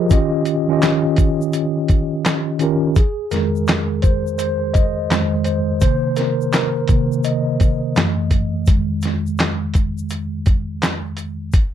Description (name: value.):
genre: lo-fi hip hop.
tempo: 84 BPM.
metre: 4/4.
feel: swing 66% on 16ths.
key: F minor.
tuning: A4 = 440 Hz.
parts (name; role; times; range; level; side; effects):
mellow tine electric piano; accompaniment; 0.0-11.6 s; F2 to Eb5; -18 LUFS; equal; medium stereo tremolo, cassette tape, low-pass filter.
dusty soul sampler-style drum kit; drums; 0.1-11.7 s; handclaps, hi-hat, kick drum, snare drum; -17 LUFS; equal; none.
egg shaker; percussion; 0.1-11.7 s; none; -40 LUFS; left 15 dB; none.
room: little or no reverb.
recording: dark, warm production.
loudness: -16 LUFS.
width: side -10 dB against mid.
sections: 0.0-3.0 A section; 3.0-11.7 B section.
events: tine electric piano solo 3.0-11.7.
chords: 0.1 Eb7; 3.0 Fm7; 5.8 Cm7; 8.0 Gbm7; 8.7 Fm7.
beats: | 0.10 0.82 1.53 2.25 | 2.96 3.68 4.39 5.11 | 5.82 6.53 7.25 7.96 | 8.68 9.39 10.11 10.82 | 11.53.